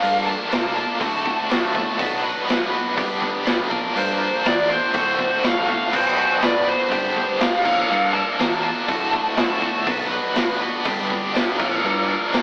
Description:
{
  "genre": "garage rock duo or trio",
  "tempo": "122 BPM",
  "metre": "4/4",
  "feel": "straight",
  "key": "unclear",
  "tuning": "A4 = 439 Hz",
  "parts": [
    { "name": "overdriven slide guitar", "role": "melody", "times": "0.0-10.1 s", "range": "C5 to A5", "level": "-25 LUFS", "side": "equal", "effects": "none" },
    { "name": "biting overdriven guitar", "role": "riff", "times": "0.0-12.4 s", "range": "D2 to B4", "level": "-25 LUFS", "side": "equal", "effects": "tremolo" },
    { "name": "growling fingered electric bass", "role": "bass", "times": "0.0-12.4 s", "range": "D1 to G2", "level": "-36 LUFS", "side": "equal", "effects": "overdrive" },
    { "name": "vintage drum kit", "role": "drums", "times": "0.0-12.4 s", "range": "crash cymbal, hi-hat, kick drum, snare drum", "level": "-26 LUFS", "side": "equal", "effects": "none" },
    { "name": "tambourine", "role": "percussion", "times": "0.5-12.4 s", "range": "none", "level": "-44 LUFS", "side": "equal", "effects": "none" }
  ],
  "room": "moderate stone room reverb, RT60 1.2 s",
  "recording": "rough rehearsal-room recording, AM radio sound",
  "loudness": "-21 LUFS",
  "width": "mono",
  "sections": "0.0-12.4 A section",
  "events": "none",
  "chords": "0.0 Bb; 1.0 D; 2.0 Bm; 3.0 G; 3.7 Bb; 4.9 D; 5.9 Bm; 6.9 G; 7.7 Bb; 8.9 D; 9.9 Bm; 10.9 G; 11.6 Bb",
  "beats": "| 0.03 0.52 1.01 1.51 | 2.00 2.49 2.98 3.47 | 3.96 4.46 4.95 5.44 | 5.93 6.42 6.92 7.41 | 7.90 8.39 8.88 9.38 | 9.87 10.36 10.86 11.35 | 11.84 12.33"
}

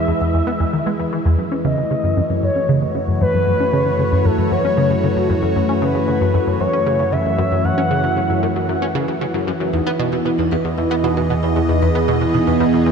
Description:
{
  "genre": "ambient, sequencer-driven space music",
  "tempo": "115 BPM",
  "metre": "4/4",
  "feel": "straight",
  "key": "unclear",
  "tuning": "A4 = 440 Hz",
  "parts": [
    { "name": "expressive portamento lead", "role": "melody", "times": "0.0-8.7 s", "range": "A4 to F#5", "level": "-22 LUFS", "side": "equal", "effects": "chorus, analog delay" },
    { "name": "phased analog pad", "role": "sustained chords", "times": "0.0-12.9 s", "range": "E3 to D#5", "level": "-20 LUFS", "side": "right 1 dB", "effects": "phaser, chorus" },
    { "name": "tight sequenced synth", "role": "riff", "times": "0.0-12.9 s", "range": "E2 to C#4", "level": "-20 LUFS", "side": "equal", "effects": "chorus, phaser, analog delay" },
    { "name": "analog drone", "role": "bass", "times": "0.5-12.9 s", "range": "E2 to F#2", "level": "-25 LUFS", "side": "equal", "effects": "chorus" },
    { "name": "vibraphone with medium mallets", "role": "arpeggios", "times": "9.7-12.9 s", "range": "D#4 to B4", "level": "-22 LUFS", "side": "right 2 dB", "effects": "auto-pan, analog delay" }
  ],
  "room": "wet huge ambient reverb, RT60 7.6 s",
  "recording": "in a vast, echoing space",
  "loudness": "-15 LUFS",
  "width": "side -6 dB against mid",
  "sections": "0.0-1.4 A section; 1.4-12.9 B section",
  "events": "none",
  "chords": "0.0 E; 1.4 F#m7; 9.7 Emaj7",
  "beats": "0.34 0.86 | 1.39 1.91 2.43 2.95 | 3.47 3.99 4.52 5.04 | 5.56 6.08 6.60 7.12 | 7.65 8.17 8.69 9.21 | 9.73 10.26 10.78 11.30 | 11.82 12.34 12.86"
}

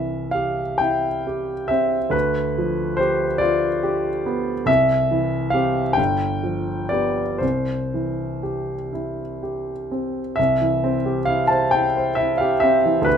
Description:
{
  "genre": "classical, romantic nocturne for solo piano",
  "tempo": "39-48 BPM (dotted quarters)",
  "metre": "6/8",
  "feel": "rubato",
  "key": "C major",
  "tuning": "A4 = 440 Hz",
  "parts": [
    { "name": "warm grand piano", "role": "solo", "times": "0.0-13.2 s", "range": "G1 to A5", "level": "-19 LUFS", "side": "equal", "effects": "none" }
  ],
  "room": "light reverb",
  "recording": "none",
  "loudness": "-19 LUFS",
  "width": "side -8 dB against mid",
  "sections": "0.0-10.4 A section; 10.4-13.2 A section",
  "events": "none",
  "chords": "0.0 C; 2.1 G7/D; 4.7 C; 6.0 G7; 7.4 C",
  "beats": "0.80 | 2.14 3.41 | 4.68 5.98 | 7.42 8.92 | 10.38 11.73 | 13.06"
}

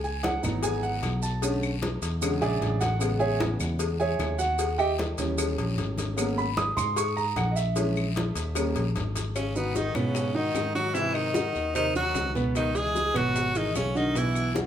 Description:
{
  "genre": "Afro-Cuban jazz",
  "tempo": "151 BPM",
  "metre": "4/4",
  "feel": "straight",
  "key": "G# minor",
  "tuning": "A4 = 440 Hz",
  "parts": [
    { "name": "warm grand piano", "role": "accompaniment", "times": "0.0-14.7 s", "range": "B2 to D#6", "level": "-28 LUFS", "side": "right 2 dB", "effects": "none" },
    { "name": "fingered electric bass", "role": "bass", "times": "0.0-14.7 s", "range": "G#1 to G#2", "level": "-30 LUFS", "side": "equal", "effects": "none" },
    { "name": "congas", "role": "percussion", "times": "0.0-14.7 s", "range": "none", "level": "-35 LUFS", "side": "left 1 dB", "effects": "none" },
    { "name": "maracas", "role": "percussion", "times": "0.0-14.7 s", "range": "none", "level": "-39 LUFS", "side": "right 6 dB", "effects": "none" },
    { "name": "cowbell and bongos", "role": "percussion", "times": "0.2-14.7 s", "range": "none", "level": "-34 LUFS", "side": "left 6 dB", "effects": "none" },
    { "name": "guiro", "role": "percussion", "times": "0.3-14.7 s", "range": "none", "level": "-43 LUFS", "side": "left 6 dB", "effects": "none" },
    { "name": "claves", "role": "percussion", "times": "0.4-14.6 s", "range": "none", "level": "-40 LUFS", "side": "left 8 dB", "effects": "none" },
    { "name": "edgy tenor saxophone", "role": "melody", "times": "9.4-14.6 s", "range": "B3 to G#4", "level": "-28 LUFS", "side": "equal", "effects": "none" },
    { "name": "growling tenor saxophone", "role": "second line", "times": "9.4-14.6 s", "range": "B2 to G#3", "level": "-34 LUFS", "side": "left 4 dB", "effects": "none" }
  ],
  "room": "wet large studio reverb, RT60 0.8 s",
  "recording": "band playing live in one room, faint mains hum",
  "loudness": "-24 LUFS",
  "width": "side -9 dB against mid",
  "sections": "0.0-9.4 A section; 9.4-14.7 B section",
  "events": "grand piano solo 0.0-9.4",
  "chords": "0.0 C#m11; 1.4 Bm9; 2.2 E13; 3.0 Amaj9; 4.6 D#7b9; 6.2 G#m11; 7.8 A#m7b5; 8.6 D#7; 9.4 G#m7; 11.0 G#7; 12.6 C#m7; 14.2 Bm",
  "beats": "0.24 0.64 1.03 | 1.43 1.83 2.22 2.62 | 3.02 3.41 3.81 4.20 | 4.60 5.00 5.39 5.79 | 6.18 6.58 6.97 7.37 | 7.77 8.16 8.56 8.96 | 9.36 9.76 10.15 10.55 | 10.95 11.35 11.75 12.15 | 12.55 12.96 13.36 13.76 | 14.16 14.56"
}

